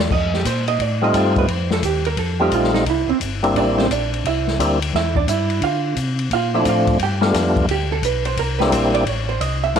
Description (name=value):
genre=soul jazz organ trio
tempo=174 BPM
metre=4/4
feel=swing 65% on 8ths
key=C mixolydian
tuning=A4 = 440 Hz
part: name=hollow-body jazz guitar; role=accompaniment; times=0.0-9.8 s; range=C4 to G5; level=-22 LUFS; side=right 11 dB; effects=none
part: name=mellow tonewheel organ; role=bass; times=0.0-9.8 s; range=G1 to D3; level=-22 LUFS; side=left 1 dB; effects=chorus vibrato, slow rotary speaker
part: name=open jazz drum kit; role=drums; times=0.1-9.8 s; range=crash cymbal, hi-hat, kick drum, ride cymbal, snare drum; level=-24 LUFS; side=left 5 dB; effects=none
part: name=percussive tonewheel organ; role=melody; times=1.0-9.8 s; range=E3 to F4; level=-19 LUFS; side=left 1 dB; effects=slow rotary speaker
room=light reverb, small room ambience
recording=1960s-style stereo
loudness=-16 LUFS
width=side -8 dB against mid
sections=0.0-9.8 A section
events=hollow-body jazz guitar solo 0.0-9.8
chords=0.1 F9; 2.9 C9; 5.6 Dm7; 7.0 G9; 8.4 C9; 9.1 Am